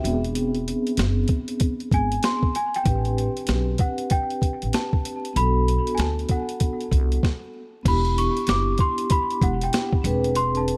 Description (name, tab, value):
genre	hip hop, jazz-hop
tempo	96 BPM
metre	4/4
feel	swing 64% on 16ths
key	E minor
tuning	A4 = 440 Hz
part	vibraphone with soft mallets	accompaniment	0.0-10.8 s	B3 to G5	-29 LUFS	equal	analog delay
part	upright bass	bass	0.0-10.7 s	E1 to D2	-26 LUFS	equal	none
part	boom bap sampler-style drum kit	drums	0.1-10.8 s	crash cymbal, hi-hat, kick drum, snare drum	-26 LUFS	equal	none
part	worn celesta	melody	1.9-10.8 s	F#5 to D6	-29 LUFS	equal	analog delay
room	little or no reverb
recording	echo-heavy mix, vinyl crackle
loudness	-23 LUFS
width	mono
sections	0.0-7.9 A section; 7.9-10.8 B section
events	stop 7.2-7.9; celesta solo 7.9-10.8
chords	0.0 E7b13; 2.9 Am11; 5.4 Bm7; 7.2 N.C.; 7.9 Em7; 10.0 E7b13